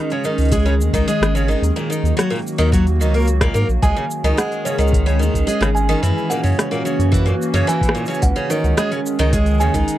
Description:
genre	folktronica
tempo	109 BPM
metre	4/4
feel	straight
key	C# dorian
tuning	A4 = 440 Hz
part	warbly tape-like pad	sustained chords	0.0-10.0 s	D#3 to G#4	-23 LUFS	right 1 dB	chorus, built-in reverb, phaser
part	picked twelve-string acoustic guitar	arpeggios	0.0-10.0 s	A#2 to A#3	-21 LUFS	equal	tape echo
part	organic electronic drum kit	drums	0.1-10.0 s	cabasa, hi-hat, rim click	-25 LUFS	equal	overdrive
part	warm sub bass	bass	0.4-9.8 s	G#1 to G#2	-17 LUFS	equal	none
part	electronic kick drum	drums	0.5-9.9 s	none	-20 LUFS	equal	none
part	kalimba	second line	3.8-9.9 s	C#5 to G#5	-26 LUFS	right 3 dB	tape echo
room	little or no reverb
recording	dry, close 1970s-style studio recording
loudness	-15 LUFS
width	side -13 dB against mid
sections	0.0-10.0 A section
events	none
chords	0.0 C#sus2; 1.6 D#m; 3.8 C#sus2; 6.0 F#7; 8.2 C#sus2

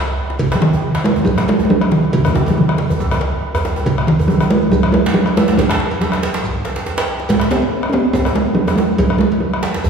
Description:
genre	west african traditional, West African drum ensemble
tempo	140 BPM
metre	4/4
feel	swing 53% on 16ths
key	unclear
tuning	A4 = 440 Hz
part	bombo	percussion	0.1-9.9 s	none	-23 LUFS	equal	none
part	shekere	percussion	0.1-9.9 s	none	-32 LUFS	equal	none
part	djembe	percussion	0.2-9.9 s	none	-26 LUFS	left 2 dB	none
part	talking drum	melody	0.4-9.9 s	C#3 to C#4	-14 LUFS	right 1 dB	none
part	cowbell	percussion	0.4-9.7 s	none	-29 LUFS	right 2 dB	none
part	djembe	percussion	0.5-9.9 s	none	-22 LUFS	right 2 dB	none
room	wet concert hall reverb, RT60 2.1 s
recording	heard from further back in the room, studio ambience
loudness	-13 LUFS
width	side -6 dB against mid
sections	0.4-9.9 A section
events	drum fill 6.9-7.3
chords	none

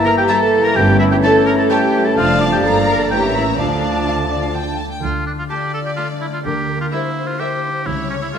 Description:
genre	cinematic, playful, whimsical film cue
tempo	127 BPM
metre	3/4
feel	straight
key	D minor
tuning	A4 = 439 Hz
part	large celesta	melody	0.0-4.5 s	D6 to Bb6	-25 LUFS	left 5 dB	none
part	clear oboe	second line	0.0-8.4 s	C#4 to Bb5	-22 LUFS	right 1 dB	none
part	mellow clarinet	second line	0.0-4.8 s	C#5 to E5	-29 LUFS	right 1 dB	none
part	mellow hollow large flute ensemble	second line	0.0-4.8 s	A5 to Bb5	-24 LUFS	left 2 dB	none
part	mellow bassoon	accompaniment	0.0-4.8 s	E3 to F3	-24 LUFS	right 2 dB	none
part	dark French horn section	sustained chords	0.0-4.8 s	A3 to F4	-20 LUFS	left 3 dB	none
part	concert harp	arpeggios	0.0-8.4 s	F2 to Bb4	-26 LUFS	left 5 dB	none
part	rich studio viola section	accompaniment	0.1-8.4 s	G3 to Bb4	-20 LUFS	right 2 dB	none
part	warm studio violin section	melody	0.3-8.4 s	E5 to Bb5	-25 LUFS	left 1 dB	none
part	rich studio violin section	second line	0.3-8.4 s	Bb4 to A5	-27 LUFS	left 2 dB	none
part	rich studio double bass section	bass	0.8-8.2 s	F1 to D2	-24 LUFS	right 4 dB	none
part	warm studio cello section	bass	0.8-8.2 s	F2 to D3	-25 LUFS	right 4 dB	none
room	moderate scoring stage reverb, RT60 2.0 s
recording	none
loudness	-14 LUFS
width	side -7 dB against mid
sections	0.0-5.0 A section; 5.0-8.4 B section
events	none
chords	0.0 Edim/G; 0.8 A7/G; 2.2 Dm/F; 2.6 Gm7; 3.1 A7b9; 3.6 Dm; 6.5 Em7b5/D; 7.9 A7/C#

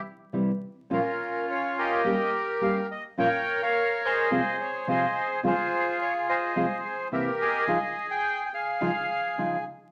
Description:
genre	tango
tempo	106 BPM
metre	4/4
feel	rubato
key	unclear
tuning	A4 = 440 Hz
part	nylon-string guitar	accompaniment	0.3-9.6 s	Bb2 to G4	-30 LUFS	equal	none
part	bandoneon	melody	0.9-9.6 s	Db4 to G5	-28 LUFS	equal	none
room	wet club reverb, RT60 0.9 s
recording	vinyl crackle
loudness	-27 LUFS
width	mono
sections	0.0-9.9 A section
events	none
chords	0.0 C; 0.9 Bbm; 2.0 Gdim; 3.2 Bbm; 4.3 Fm/C; 5.4 Dbmaj7; 6.6 Fm/C; 7.1 C7; 7.7 Dbadd9

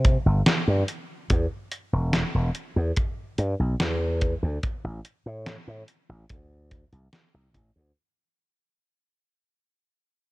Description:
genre	vaporwave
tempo	72 BPM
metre	4/4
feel	straight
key	unclear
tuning	A4 = 440 Hz
part	slap bass with an envelope filter	bass	0.0-7.9 s	E1 to C3	-24 LUFS	equal	none
part	detuned 8-bit digital drum machine	drums	0.0-7.7 s	hi-hat, snare drum	-25 LUFS	equal	gated reverb
part	kick drum	drums	0.0-7.7 s	none	-23 LUFS	equal	none
room	little or no reverb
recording	cassette tape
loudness	-23 LUFS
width	side -20 dB against mid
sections	0.0-8.0 A section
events	fade-out 0.0-8.0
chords	none

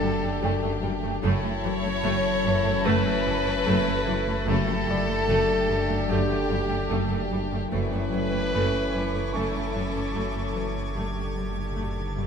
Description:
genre	cinematic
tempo	74 BPM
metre	4/4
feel	straight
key	unclear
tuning	A4 = 445 Hz
part	rich studio violin section	melody	0.0-12.3 s	G4 to C#5	-34 LUFS	left 1 dB	none
part	clear studio violin section	second line	0.0-12.3 s	C#4 to A4	-34 LUFS	left 2 dB	none
part	warm clarinet	second line	0.0-12.3 s	G4 to C#5	-30 LUFS	equal	none
part	rich studio viola section	accompaniment	0.0-12.2 s	E3 to A3	-34 LUFS	right 2 dB	none
part	dark French horn section	sustained chords	0.0-12.3 s	D3 to A4	-33 LUFS	left 6 dB	none
part	deep dark ambient pad	sustained chords	0.0-12.3 s	C#4 to C#6	-39 LUFS	right 2 dB	chorus, built-in reverb
part	warm trombone section	sustained chords	0.0-12.3 s	D3 to A3	-36 LUFS	right 4 dB	none
part	concert harp	riff	0.0-12.3 s	F#2 to F#3	-31 LUFS	left 4 dB	none
part	rich studio cello section	bass	0.0-12.2 s	F#2	-32 LUFS	right 3 dB	none
part	rich studio double bass section	bass	0.0-12.3 s	F#1	-33 LUFS	right 4 dB	none
part	saturated sub bass	drone	0.0-12.3 s	F#1	-34 LUFS	right 1 dB	none
part	rich studio violin section	texture	0.0-12.3 s	A5 to A#6	-39 LUFS	left 2 dB	none
part	warm baby grand piano	texture	0.0-12.3 s	C#4 to C#6	-39 LUFS	equal	none
part	timpani	percussion	11.0-12.3 s	F#2	-41 LUFS	equal	none
part	reverse cymbal	sound effects	12.1-12.3 s	none	barely audible	none	none
room	moderate scoring stage reverb, RT60 2.0 s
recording	none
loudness	-23 LUFS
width	side -6 dB against mid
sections	0.0-12.3 A section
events	timpani fill 11.0-12.3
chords	0.0 Gsus2/F#; 1.2 A/F#; 4.5 Gsus2/F#; 7.7 A/F#; 11.0 Gsus2/F#

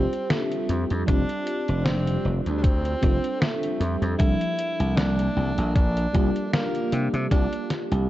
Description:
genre	vaporwave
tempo	77 BPM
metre	4/4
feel	swing 55% on 16ths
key	F major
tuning	A4 = 440 Hz
part	clear tenor saxophone	melody	0.0-7.8 s	A3 to E4	-30 LUFS	right 1 dB	tape echo
part	FM electric piano with soft pad layer	accompaniment	0.0-8.1 s	F3 to A4	-28 LUFS	equal	tremolo, lush chorus
part	slap bass	bass	0.0-8.1 s	F1 to C3	-24 LUFS	equal	none
part	detuned 8-bit digital drum machine	drums	0.1-8.1 s	hi-hat, snare drum	-28 LUFS	equal	vintage 12-bit sampler grit
part	electronic kick drum	drums	1.1-7.5 s	none	-22 LUFS	equal	vintage 12-bit sampler grit
room	light reverb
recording	dark, warm production, cassette tape, nothing above 7.9 kHz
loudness	-21 LUFS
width	side -14 dB against mid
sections	0.0-8.1 A section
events	none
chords	0.0 F6; 4.2 C13sus4

